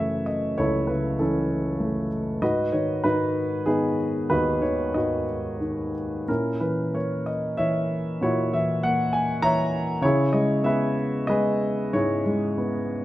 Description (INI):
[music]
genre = classical, lyrical solo piano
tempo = 86-102 BPM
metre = 3/4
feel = rubato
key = unclear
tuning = A4 = 440 Hz
[part]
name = dark grand piano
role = solo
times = 0.0-13.0 s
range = C#2 to A#5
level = -22 LUFS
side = equal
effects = none
[sound]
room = light reverb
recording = close, detailed microphones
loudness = -22 LUFS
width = side -15 dB against mid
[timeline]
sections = 0.0-13.0 A section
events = none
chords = 0.0 F#m7; 2.4 G#m7; 6.3 F#7/A#; 10.0 C#m7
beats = | 0.57 1.19 1.80 | 2.42 3.04 3.67 | 4.31 4.95 5.62 | 6.29 6.94 7.59 | 8.23 8.84 9.43 | 10.03 10.65 11.29 | 11.94 12.58